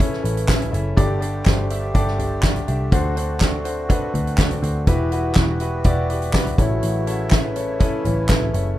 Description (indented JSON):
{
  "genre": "piano-driven pop",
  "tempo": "123 BPM",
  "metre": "4/4",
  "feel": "straight",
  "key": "unclear",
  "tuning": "A4 = 440 Hz",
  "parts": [
    { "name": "warm concert grand piano", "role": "accompaniment", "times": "0.0-8.8 s", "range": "G2 to E5", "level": "-25 LUFS", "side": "left 1 dB", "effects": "none" },
    { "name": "accordion", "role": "sustained chords", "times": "0.0-8.8 s", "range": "C#3 to G4", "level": "-29 LUFS", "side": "equal", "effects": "none" },
    { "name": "vintage muted picked electric bass", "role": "bass", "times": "0.0-8.8 s", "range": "E1 to D2", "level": "-23 LUFS", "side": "equal", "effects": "none" },
    { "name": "soft-mallet drum kit", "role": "drums", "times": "0.0-8.7 s", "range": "handclaps, hi-hat, kick drum, snare drum, toms", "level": "-20 LUFS", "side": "equal", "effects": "none" },
    { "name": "mellow French horn section", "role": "second line", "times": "4.9-8.5 s", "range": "E3 to G4", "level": "-30 LUFS", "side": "equal", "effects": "plate reverb" }
  ],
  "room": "light reverb",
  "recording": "rough home demo mix",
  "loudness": "-17 LUFS",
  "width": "side -14 dB against mid",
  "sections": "0.0-8.8 A section",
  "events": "none",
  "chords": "0.0 A; 1.0 Gsus2; 2.9 D7; 4.9 Emadd9; 6.6 A",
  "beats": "0.00 0.49 | 0.97 1.46 1.95 2.44 | 2.92 3.41 3.90 4.39 | 4.88 5.37 5.85 6.34 | 6.83 7.32 7.80 8.29 | 8.78"
}